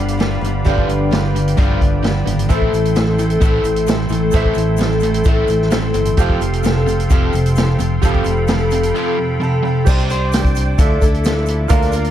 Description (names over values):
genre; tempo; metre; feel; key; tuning
folk rock and heartland rock; 130 BPM; 4/4; straight; unclear; A4 = 437 Hz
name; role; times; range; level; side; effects
bright baby grand piano; accompaniment; 0.0-12.1 s; F4 to A5; -26 LUFS; right 11 dB; none
picked twelve-string acoustic guitar; accompaniment; 0.0-12.1 s; G2 to C5; -20 LUFS; left 3 dB; none
musette accordion; sustained chords; 0.0-12.1 s; G4 to D6; -29 LUFS; right 2 dB; none
overdriven electric guitar; riff; 0.0-9.8 s; F2 to A3; -20 LUFS; right 1 dB; none
fingered electric bass; bass; 0.0-12.1 s; F1 to D2; -19 LUFS; equal; none
vintage drum kit; drums; 0.1-12.1 s; crash cymbal, hi-hat, kick drum, snare drum; -17 LUFS; equal; none
egg shaker; percussion; 2.5-12.0 s; none; -37 LUFS; left 20 dB; none
room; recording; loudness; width
light reverb, small room ambience; dark, warm production; -13 LUFS; side -11 dB against mid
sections
0.0-9.9 A section; 9.9-12.1 B section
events
grand piano fill 9.2-9.9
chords
0.0 G7; 2.5 Am; 6.2 Fadd9; 9.9 Csus2; 10.8 Dmadd9